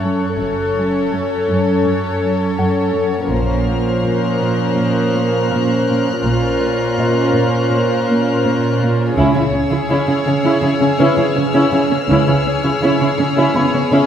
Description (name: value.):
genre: cinematic, suspense film score.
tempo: 82 BPM.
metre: 4/4.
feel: straight.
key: unclear.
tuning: A4 = 444 Hz.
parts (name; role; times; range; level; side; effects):
warm symphonic violin section; second line; 0.0-14.1 s; G#4 to C#5; -21 LUFS; left 1 dB; none.
dark studio viola section; accompaniment; 0.0-14.1 s; E#3 to A4; -18 LUFS; equal; none.
warm studio cello section; riff; 0.0-14.1 s; F#2 to C#4; -21 LUFS; right 1 dB; none.
warm studio cello section; bass; 0.0-14.0 s; F#2 to C#3; -22 LUFS; right 2 dB; none.
felt-muted upright piano; texture; 0.0-14.1 s; B3 to B5; -27 LUFS; left 4 dB; none.
warm studio violin section; texture; 0.0-14.1 s; C#6 to F#6; -28 LUFS; left 5 dB; none.
dark symphonic double bass section; bass; 0.4-12.3 s; F#1 to C#2; -23 LUFS; right 1 dB; none.
room: wet scoring stage reverb, RT60 1.8 s.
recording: heard from further back in the room.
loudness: -14 LUFS.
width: side -9 dB against mid.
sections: 0.0-14.1 A section.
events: none.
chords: 0.0 F#m; 3.3 A#madd9; 9.2 C#m.